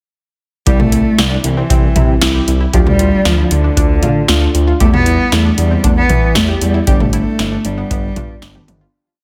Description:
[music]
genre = synth-pop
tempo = 116 BPM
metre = 4/4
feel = straight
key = unclear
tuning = A4 = 439 Hz
[part]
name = dark cello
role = melody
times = 0.7-8.7 s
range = D3 to B3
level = -19 LUFS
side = equal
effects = digital delay
[part]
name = muted felt-like synth keys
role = accompaniment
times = 0.7-8.9 s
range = G3 to B5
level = -23 LUFS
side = equal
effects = chorus
[part]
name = analog pluck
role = arpeggios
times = 0.7-8.9 s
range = B3 to A4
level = -27 LUFS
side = equal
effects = chorus, digital delay
[part]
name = smooth synth bass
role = bass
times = 0.7-8.9 s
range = G1 to E3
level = -18 LUFS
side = equal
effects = none
[part]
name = electro analog drum machine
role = drums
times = 0.7-8.8 s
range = hi-hat, kick drum, snare drum, toms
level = -17 LUFS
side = equal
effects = none
[sound]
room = light reverb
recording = dense, heavily limited modern master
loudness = -13 LUFS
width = mono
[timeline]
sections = 0.7-8.9 verse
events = fade-out 6.9-8.9; synth keys fill 8.2-8.9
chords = 0.7 C; 2.7 Dm; 4.8 Em; 6.9 Gadd9

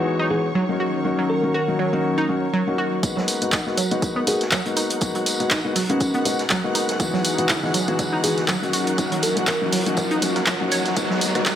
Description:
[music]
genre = deep house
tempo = 121 BPM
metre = 4/4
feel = swing 56% on 16ths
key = G# minor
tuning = A4 = 440 Hz
[part]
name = warm analog pad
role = sustained chords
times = 0.0-11.6 s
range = D#3 to A#4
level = -30 LUFS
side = equal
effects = chorus, vintage 12-bit sampler grit, sidechain pumping
[part]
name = felt-muted upright piano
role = stabs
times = 0.0-11.4 s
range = E3 to F#4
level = -24 LUFS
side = left 2 dB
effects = sidechain pumping, low-pass filter, tape echo
[part]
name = warm symphonic violin section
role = texture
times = 0.0-11.6 s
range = C#5 to F#6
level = -33 LUFS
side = equal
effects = none
[part]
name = analog pluck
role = arpeggios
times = 0.2-11.6 s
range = F#3 to C#5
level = -27 LUFS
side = right 2 dB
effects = chorus, sidechain pumping, tape echo
[part]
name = bell-like FM electric piano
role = melody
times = 0.3-10.2 s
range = C#4 to A#4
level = -28 LUFS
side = equal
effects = chorus, tape echo
[part]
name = woody FM bass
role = bass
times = 3.0-11.6 s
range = G#1 to C#3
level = -33 LUFS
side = equal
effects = none
[part]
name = electronic kick drum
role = drums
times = 3.0-11.6 s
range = none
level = -28 LUFS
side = equal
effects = overdrive, high-pass filter on kick, high-pass filter on room
[part]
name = punchy analog drum machine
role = drums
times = 3.0-11.6 s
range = handclaps, hi-hat, rim click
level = -24 LUFS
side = right 1 dB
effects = none
[part]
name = vintage drum kit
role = drums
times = 3.0-11.6 s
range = hi-hat, snare drum, tambourine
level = -31 LUFS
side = equal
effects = sidechain pumping on hats, high-pass filter on hats, high-pass filter on snare, sidechain pumping on perc, high-pass filter on perc, high-pass filter on room
[part]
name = riser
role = sound effects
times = 4.9-11.6 s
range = none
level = -30 LUFS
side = right 1 dB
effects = none
[sound]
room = moderate digital room reverb, RT60 1.1 s, small room reverb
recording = high-pass filter, low-pass filter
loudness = -19 LUFS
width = side -10 dB against mid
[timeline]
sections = 0.0-3.0 A section; 3.0-11.6 B section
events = filter sweep on analog synth pad 0.0-3.0; build-up 3.0-11.6; filter sweep on felt piano 3.0-11.6; filter sweep on synth arpeggio sound 3.0-11.6; riser 4.9-11.6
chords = 0.0 Emaj9; 0.8 D#m7; 3.0 G#m9; 7.0 Emaj9; 8.7 D#m7; 11.0 G#m9

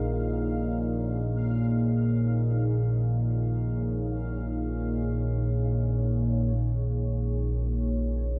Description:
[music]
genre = dark ambient drone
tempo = free time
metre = none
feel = none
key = Bb minor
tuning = A4 = 440 Hz
[part]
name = deep dark ambient pad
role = sustained chords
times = 0.0-8.4 s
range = Bb3 to Db5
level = -35 LUFS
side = equal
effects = chorus, built-in reverb
[part]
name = analog drone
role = drone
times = 0.0-8.4 s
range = Bb1 to Bb2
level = -28 LUFS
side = equal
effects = chorus
[part]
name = bubbling stepped-filter texture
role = texture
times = 0.0-6.6 s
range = F5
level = -49 LUFS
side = equal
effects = chorus, built-in reverb
[sound]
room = moderate plate reverb, RT60 3.2 s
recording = dreamy mix soaked in reverb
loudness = -27 LUFS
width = mono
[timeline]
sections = 0.0-6.6 A section; 6.6-8.4 B section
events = none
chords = 0.0 Bbm

